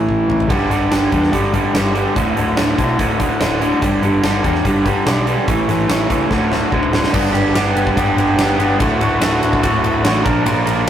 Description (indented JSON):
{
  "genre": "classic rock",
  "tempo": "144 BPM",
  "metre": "4/4",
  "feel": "straight",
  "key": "unclear",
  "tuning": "A4 = 440 Hz",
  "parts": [
    { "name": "raw garage guitar", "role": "riff", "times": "0.0-10.9 s", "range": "D2 to Bb4", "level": "-15 LUFS", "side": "right 1 dB", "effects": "overdrive" },
    { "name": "growling picked electric bass", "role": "bass", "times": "0.0-10.9 s", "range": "D1 to E2", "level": "-22 LUFS", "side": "equal", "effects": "overdrive" },
    { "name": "huge arena drum kit", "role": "drums", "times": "0.1-10.8 s", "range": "crash cymbal, hi-hat, kick drum, ride cymbal, snare drum, toms", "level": "-20 LUFS", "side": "left 1 dB", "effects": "none" }
  ],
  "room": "moderate studio ambience, RT60 0.5 s",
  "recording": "rough rehearsal-room recording, tube saturation",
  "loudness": "-13 LUFS",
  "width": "side -10 dB against mid",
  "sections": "0.5-7.1 A section; 7.1-10.9 B section",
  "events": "drum fill 0.1-0.5, 6.3-7.1",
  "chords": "0.0 A5; 0.5 G5; 2.2 D5; 3.8 G; 5.5 A; 6.3 D5; 7.1 G; 8.8 D; 10.3 Bb"
}